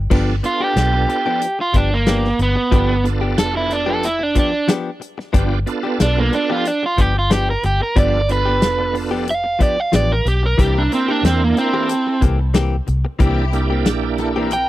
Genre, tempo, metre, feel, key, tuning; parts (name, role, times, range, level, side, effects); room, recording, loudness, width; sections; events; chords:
straight-eighth soul blues; 92 BPM; 4/4; straight; G mixolydian; A4 = 440 Hz
vintage muted fingered electric bass; bass; 0.0-14.7 s; F1 to E2; -20 LUFS; equal
bright tonewheel organ; accompaniment; 0.1-14.5 s; Bb3 to Bb4; -23 LUFS; right 5 dB; slow rotary speaker, chorus vibrato
direct-recorded clean electric guitar; stabs; 0.1-14.6 s; E3 to G4; -24 LUFS; left 6 dB
warm soul drum kit; drums; 0.1-14.7 s; crash cymbal, hi-hat, kick drum, snare drum; -17 LUFS; left 1 dB
crunchy overdriven guitar; melody; 0.5-14.7 s; Bb3 to G5; -18 LUFS; right 2 dB
warm symphonic string section; sustained chords; 10.6-14.7 s; C4 to Bb4; -29 LUFS; left 2 dB
small room ambience; dry, close 1970s-style studio recording; -15 LUFS; side -15 dB against mid
0.1-14.7 A section
overdriven electric guitar solo 0.1-14.7
0.1 G7; 10.6 C7